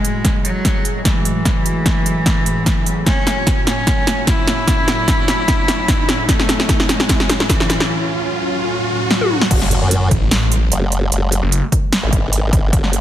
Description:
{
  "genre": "heavy wobble dubstep",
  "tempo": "149 BPM",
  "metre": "4/4",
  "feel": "swing 53% on 16ths, half-time",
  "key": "F# minor",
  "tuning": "A4 = 440 Hz",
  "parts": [
    { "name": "clear cello", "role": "melody", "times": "0.0-7.9 s", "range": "E3 to E4", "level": "-21 LUFS", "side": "left 1 dB", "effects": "tape echo" },
    { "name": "lush unison pad", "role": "sustained chords", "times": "0.0-13.0 s", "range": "A2 to C#4", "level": "-26 LUFS", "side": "equal", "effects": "chorus, sidechain pumping" },
    { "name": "big-room dance drum kit", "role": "drums", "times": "0.0-13.0 s", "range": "crash cymbal, hi-hat, snare drum, toms", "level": "-18 LUFS", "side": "equal", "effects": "overdrive" },
    { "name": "riser and impact", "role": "sound effects", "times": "0.6-11.1 s", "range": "none", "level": "-25 LUFS", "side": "right 1 dB", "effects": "none" },
    { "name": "electronic kick drum", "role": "drums", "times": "0.2-12.8 s", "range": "none", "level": "-18 LUFS", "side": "equal", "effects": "overdrive" },
    { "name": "formant-sweep wobble bass", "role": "bass", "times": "9.5-13.0 s", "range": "F#1 to F#2", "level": "-17 LUFS", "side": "equal", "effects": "chorus, overdrive" },
    { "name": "snarling distorted saw bass", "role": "bass", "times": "10.1-11.6 s", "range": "F#1 to A1", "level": "-16 LUFS", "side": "equal", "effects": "distortion, overdrive" }
  ],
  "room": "light reverb, digital ambience",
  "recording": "dense, heavily limited modern master",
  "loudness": "-14 LUFS",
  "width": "side -12 dB against mid",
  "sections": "0.0-9.5 A section; 9.5-13.0 B section",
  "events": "build-up 0.0-9.5; drum fill 0.0-7.9, 9.1-9.5; riser 0.6-9.5; break 7.9-9.5; drop 9.5-13.0; impact 9.5-11.1",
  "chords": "0.0 F#madd9"
}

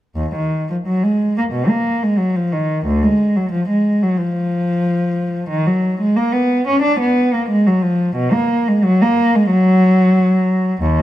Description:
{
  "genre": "classical, baroque-style suite movement for unaccompanied cello",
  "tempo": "90 BPM",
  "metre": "4/4",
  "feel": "rubato",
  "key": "unclear",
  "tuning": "A4 = 440 Hz",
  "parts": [
    { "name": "warm cello", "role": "solo", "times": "0.2-11.0 s", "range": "D2 to D4", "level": "-14 LUFS", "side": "equal", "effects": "none" }
  ],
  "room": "moderate stone room reverb, RT60 1.2 s",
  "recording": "minimal, uncompressed stereo recording",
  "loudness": "-14 LUFS",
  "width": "side -13 dB against mid",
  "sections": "0.2-11.0 A section",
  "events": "none",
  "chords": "none"
}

